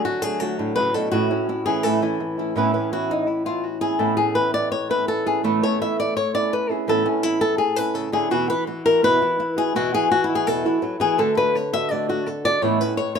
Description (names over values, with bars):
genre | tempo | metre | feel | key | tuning
flamenco | 167 BPM | 4/4 | straight | A major | A4 = 439 Hz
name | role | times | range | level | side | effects
flamenco guitar | melody | 0.0-13.2 s | A2 to E5 | -20 LUFS | left 2 dB | none
flamenco guitar | stabs | 0.0-13.2 s | E2 to F#4 | -25 LUFS | right 6 dB | none
room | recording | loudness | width
light reverb | minimal, uncompressed stereo recording | -19 LUFS | side -6 dB against mid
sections
0.0-2.6 A section; 2.6-13.2 B section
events
nylon-string guitar solo 2.6-13.2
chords
0.0 D; 1.1 A; 2.6 Aadd9; 8.3 Esus2; 11.2 D; 12.6 Aadd9